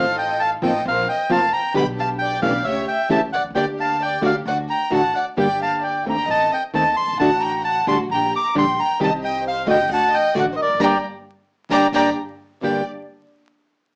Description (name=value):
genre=tango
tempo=133 BPM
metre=4/4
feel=rubato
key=G minor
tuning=A4 = 441 Hz
part: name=bandoneon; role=melody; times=0.0-12.8 s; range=D5 to D6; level=-23 LUFS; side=equal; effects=none
part: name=warm chamber violin section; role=second line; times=0.0-12.8 s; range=Bb4 to Bb5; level=-28 LUFS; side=equal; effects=none
part: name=nylon-string guitar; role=accompaniment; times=0.0-12.8 s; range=G2 to G4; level=-24 LUFS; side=equal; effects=none
part: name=dark studio string section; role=stabs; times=0.0-12.8 s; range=A3 to Bb4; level=-32 LUFS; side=equal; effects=none
part: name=upright bass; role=bass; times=0.0-12.8 s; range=E1 to Eb2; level=-36 LUFS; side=equal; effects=none
room=wet club reverb, RT60 0.7 s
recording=worn, warbling old tape, cassette tape, vinyl crackle, warbly pitch drift, small speaker sound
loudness=-20 LUFS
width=mono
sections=0.0-12.6 A section; 12.6-14.0 B section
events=band accent 10.8-12.6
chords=0.0 F7/A; 0.9 Bbsus2; 1.8 G/B; 2.7 A7/C#; 3.6 Gm/D; 4.5 D; 5.4 Gm; 6.3 Adim; 7.2 D/A; 8.1 Gm/Bb; 9.0 Cm; 9.9 D; 10.8 Gm; 12.2 N.C.; 12.6 Gm